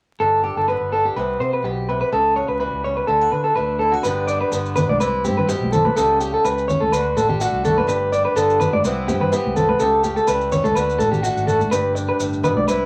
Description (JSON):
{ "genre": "highlife guitar band", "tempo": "125 BPM", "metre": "4/4", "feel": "straight", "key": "G major", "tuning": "A4 = 439 Hz", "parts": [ { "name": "picked swing-style acoustic guitar", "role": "accompaniment", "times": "0.2-12.9 s", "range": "G2 to A4", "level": "-29 LUFS", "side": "equal", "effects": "none" }, { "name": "electric guitar at the edge of break-up", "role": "arpeggios", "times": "0.2-12.9 s", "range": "F#4 to D5", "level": "-21 LUFS", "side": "equal", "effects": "none" }, { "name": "fingered electric bass", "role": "bass", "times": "0.2-12.9 s", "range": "G1 to D3", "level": "-29 LUFS", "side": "equal", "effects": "none" }, { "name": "maracas", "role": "percussion", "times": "4.0-12.8 s", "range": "none", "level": "-38 LUFS", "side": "equal", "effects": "none" }, { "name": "congas", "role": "percussion", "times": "4.8-12.7 s", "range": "none", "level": "-27 LUFS", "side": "equal", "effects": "none" } ], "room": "wet small room reverb, RT60 0.6 s", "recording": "vinyl crackle", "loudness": "-19 LUFS", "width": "mono", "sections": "0.2-4.0 A section; 4.0-12.9 B section", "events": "none", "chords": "0.2 Gadd9; 1.2 Cmaj7; 2.1 A7/C#; 3.1 D; 4.0 G; 5.0 Cmaj7; 6.0 A7/C#; 6.9 D; 7.9 Gadd9; 8.8 Cmaj7; 9.8 A7/C#; 10.8 D; 11.7 Gadd9" }